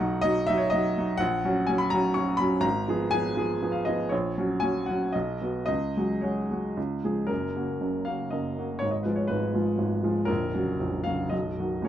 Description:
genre	classical, romantic character piece for solo piano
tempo	107-127 BPM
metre	3/4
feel	rubato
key	F# major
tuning	A4 = 441 Hz
part	clear baby grand piano	solo	0.0-11.9 s	A#0 to C#6	-25 LUFS	equal	none
room	moderate studio ambience, RT60 0.5 s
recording	dark, warm production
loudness	-25 LUFS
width	side -11 dB against mid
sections	0.0-7.3 A section; 7.3-11.9 B section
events	none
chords	0.0 B; 1.2 F#/A#; 2.6 Fdim/Ab; 4.1 F#/A#; 5.1 B; 5.7 C#sus4; 6.8 C#; 7.3 F#; 8.8 Fdim/Ab; 10.3 F#/A#; 11.3 B

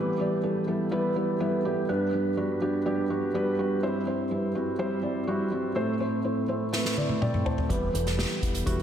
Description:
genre	piano-driven pop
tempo	124 BPM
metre	4/4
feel	straight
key	unclear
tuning	A4 = 440 Hz
part	felt-muted upright piano	accompaniment	0.0-8.8 s	G2 to A5	-26 LUFS	right 1 dB	slapback echo
part	percussive tonewheel organ	sustained chords	0.0-8.8 s	E3 to B4	-36 LUFS	equal	fast rotary speaker
part	unplugged drum kit	drums	6.7-8.8 s	hi-hat, kick drum, snare drum, toms	-28 LUFS	equal	none
part	fingered electric bass	bass	7.7-8.8 s	E1	-30 LUFS	equal	none
room	moderate scoring stage reverb, RT60 2.0 s, small room ambience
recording	big arena sound, faint mains hum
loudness	-25 LUFS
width	side -9 dB against mid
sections	0.0-8.8 A section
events	drum fill 6.7-7.7; felt piano fill 6.7-7.7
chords	0.0 Em; 1.9 G; 3.8 C/G; 5.8 Am; 7.7 Em

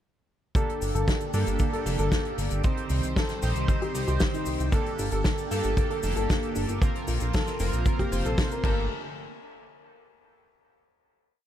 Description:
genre	italo disco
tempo	115 BPM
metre	4/4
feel	straight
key	G minor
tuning	A4 = 440 Hz
part	dark baby grand piano	melody	0.6-8.8 s	Eb4 to Bb4	-33 LUFS	left 2 dB	tape echo
part	phased string machine	sustained chords	0.6-8.9 s	C3 to C5	-35 LUFS	left 1 dB	ensemble chorus, phaser
part	chorused polysynth	stabs	0.6-8.8 s	Bb3 to C5	-34 LUFS	right 3 dB	tape echo
part	kick drum	drums	0.6-8.7 s	none	-26 LUFS	equal	none
part	natural country drum kit	drums	0.6-8.7 s	cabasa, crash cymbal, hi-hat, snare drum	-33 LUFS	left 3 dB	none
part	chorused synth bass	bass	0.8-8.9 s	F1 to G2	-28 LUFS	equal	none
room	small room reverb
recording	dark, warm production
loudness	-24 LUFS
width	side -11 dB against mid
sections	0.6-8.9 verse; 8.9-11.0 final hit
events	none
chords	0.6 Gmadd9; 2.6 Cm; 4.7 Gmadd9; 6.8 Bbsus2; 8.6 Gmadd9; 8.9 N.C.

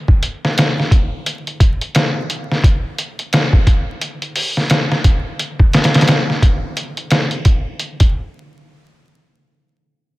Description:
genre	trip hop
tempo	87 BPM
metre	4/4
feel	swing 60% on 16ths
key	none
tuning	none
part	trip hop sampler-style drum kit	drums	0.1-8.1 s	hi-hat, kick drum, snare drum	-13 LUFS	equal	none
room	moderate plate reverb, RT60 2.7 s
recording	dreamy mix soaked in reverb, vinyl crackle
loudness	-14 LUFS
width	side -19 dB against mid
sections	0.0-8.1 A section; 8.1-10.2 B section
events	none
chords	none

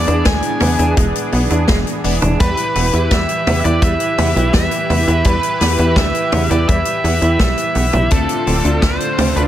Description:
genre	synthwave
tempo	84 BPM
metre	4/4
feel	straight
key	unclear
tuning	A4 = 440 Hz
part	biting lead guitar	melody	0.0-9.4 s	A4 to G#5	-20 LUFS	equal	overdrive, vintage 12-bit sampler grit, ping-pong delay
part	warm analog pad	sustained chords	0.0-9.5 s	D3 to B4	-23 LUFS	right 1 dB	chorus, tremolo, sidechain pumping
part	chorused polysynth	stabs	0.0-9.5 s	B3 to D5	-25 LUFS	equal	phaser
part	tight sequencer bass	bass	0.0-9.5 s	D1 to E2	-17 LUFS	equal	none
part	clean electric guitar	arpeggios	0.1-9.5 s	G3 to E4	-24 LUFS	right 2 dB	tape echo
part	swinging big-band drum kit	drums	0.1-9.5 s	hi-hat, snare drum, toms	-21 LUFS	left 1 dB	none
part	kick drum	drums	0.3-9.0 s	none	-19 LUFS	equal	none
room	light reverb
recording	none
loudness	-13 LUFS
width	side -12 dB against mid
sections	0.0-9.5 A section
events	none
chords	0.0 E7; 2.4 Em; 8.1 Dm7

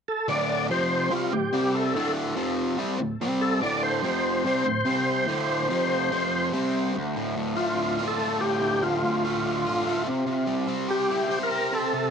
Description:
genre	rock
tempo	144 BPM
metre	4/4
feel	straight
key	D minor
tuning	A4 = 440 Hz
part	overdriven tonewheel organ	melody	0.1-12.1 s	F4 to D5	-26 LUFS	equal	slow rotary speaker, chorus vibrato, tape echo
part	overdriven semi-hollow guitar	riff	0.3-12.1 s	D2 to C5	-26 LUFS	equal	none
room	moderate small room reverb, RT60 0.6 s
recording	none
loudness	-23 LUFS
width	side -7 dB against mid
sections	0.3-6.9 A section; 6.9-12.1 B section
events	none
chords	0.3 D5; 0.7 F5; 1.1 Dm; 1.5 C5; 1.9 D5; 2.4 F5; 2.8 D5; 3.2 C5; 3.6 D5; 4.0 F5; 4.4 D5; 4.9 C5; 5.3 D5; 5.7 F5; 6.5 C5; 6.9 Dm; 10.1 C

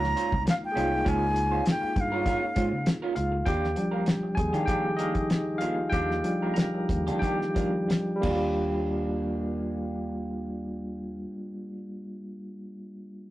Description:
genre	lush 1970s-style soul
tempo	85-100 BPM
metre	4/4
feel	swing 54% on 16ths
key	Eb major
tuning	A4 = 443 Hz
part	reedy concert flute	melody	0.0-2.9 s	F5 to Bb5	-28 LUFS	equal	none
part	barky tine electric piano	accompaniment	0.0-13.3 s	F3 to Bb5	-29 LUFS	equal	fast tremolo
part	electric guitar through a small old amp	riff	0.0-11.8 s	Bb3 to C5	-34 LUFS	right 2 dB	phaser
part	fingered electric bass	bass	0.0-11.2 s	C2 to Eb3	-33 LUFS	equal	none
part	cloth-damped thuddy drum kit	drums	0.0-8.4 s	crash cymbal, hi-hat, kick drum, snare drum	-28 LUFS	equal	none
room	wet small room reverb, RT60 0.6 s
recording	rough rehearsal-room recording, tube saturation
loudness	-25 LUFS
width	side -15 dB against mid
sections	0.0-3.5 A section; 3.5-8.6 B section; 8.6-11.4 C section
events	slowing down 3.5-8.6; tine electric piano solo 3.5-8.6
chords	0.0 Db6; 3.5 Ebmaj7

